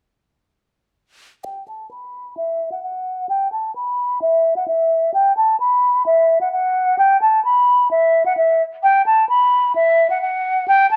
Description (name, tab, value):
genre	hip hop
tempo	130 BPM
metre	4/4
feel	half-time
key	unclear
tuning	A4 = 440 Hz
part	mellow hollow silver concert flute	melody	1.4-11.0 s	E5 to B5	-17 LUFS	equal	low-pass filter
room	light reverb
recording	none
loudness	-17 LUFS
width	mono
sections	1.4-11.0 A section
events	filter sweep on flute 1.4-11.0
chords	none